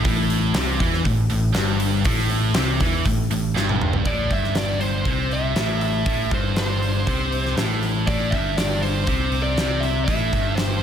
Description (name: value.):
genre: hard rock.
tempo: 120 BPM.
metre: 4/4.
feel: straight.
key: A minor.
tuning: A4 = 440 Hz.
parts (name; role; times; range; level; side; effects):
high-gain distorted guitar; riff; 0.0-10.8 s; G2 to E3; -26 LUFS; right 9 dB; distortion.
overdriven electric guitar; riff; 0.0-10.8 s; G2 to E3; -26 LUFS; left 9 dB; none.
overdriven picked electric bass; bass; 0.0-10.8 s; G1 to E2; -24 LUFS; right 1 dB; none.
huge arena drum kit; drums; 0.0-10.7 s; hi-hat, kick drum, snare drum, toms; -24 LUFS; equal; none.
biting lead guitar; melody; 4.1-10.8 s; C5 to E5; -26 LUFS; equal; overdrive.
room: studio ambience.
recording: none.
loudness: -19 LUFS.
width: side -9 dB against mid.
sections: 0.0-4.1 A section; 4.1-10.8 B section.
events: drum fill 3.6-4.1.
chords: 0.0 Am.